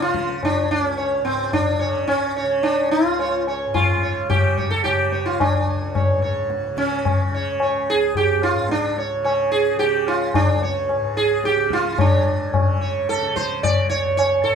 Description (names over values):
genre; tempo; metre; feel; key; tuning
indian classical, Hindustani; 109 BPM; 3/4; straight; Db major; A4 = 439 Hz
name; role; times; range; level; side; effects
sitar; melody; 0.0-14.6 s; C4 to D5; -20 LUFS; right 2 dB; none
tanpura; drone; 0.0-14.6 s; Db2 to Db3; -31 LUFS; left 1 dB; none
tabla; percussion; 0.0-14.4 s; none; -22 LUFS; left 3 dB; none
room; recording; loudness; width
wet small room reverb, RT60 0.5 s; band playing live in one room; -18 LUFS; side -7 dB against mid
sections
0.0-12.0 A section; 12.0-14.6 B section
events
none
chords
none